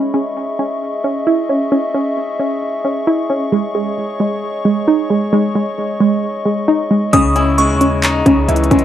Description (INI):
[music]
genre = hip hop, trap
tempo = 133 BPM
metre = 4/4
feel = half-time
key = C# minor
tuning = A4 = 440 Hz
[part]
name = dark analog pad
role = sustained chords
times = 0.0-8.8 s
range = G#4 to C#6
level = -21 LUFS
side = left 2 dB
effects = chorus
[part]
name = warbly dusty pluck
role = arpeggios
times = 0.0-8.8 s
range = G#3 to E4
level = -15 LUFS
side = right 1 dB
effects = chorus, low-pass filter, tape echo
[part]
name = delicate synth tine bell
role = second line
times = 7.1-8.4 s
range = C#6 to D#6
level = -18 LUFS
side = right 1 dB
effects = chorus, phaser, tape echo
[part]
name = electric guitar at the edge of break-up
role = accompaniment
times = 7.1-8.8 s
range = C#3 to E4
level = -17 LUFS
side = left 3 dB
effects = low-pass filter
[part]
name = warm 808-style bass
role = bass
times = 7.1-8.8 s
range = C#2 to D#2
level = -18 LUFS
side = equal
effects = none
[part]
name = trap drum kit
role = drums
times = 7.1-8.8 s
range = handclaps, hi-hat, kick drum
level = -17 LUFS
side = equal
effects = none
[sound]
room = little or no reverb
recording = dry, gritty hardware recording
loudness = -13 LUFS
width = side -11 dB against mid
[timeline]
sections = 0.0-8.8 A section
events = none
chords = 0.0 C#madd9; 3.5 G#sus4; 7.1 C#madd9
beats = 0.36 0.82 1.27 | 1.72 2.17 2.62 3.07 | 3.52 3.97 4.42 4.88 | 5.33 5.78 6.23 6.68 | 7.13 7.58 8.03 8.48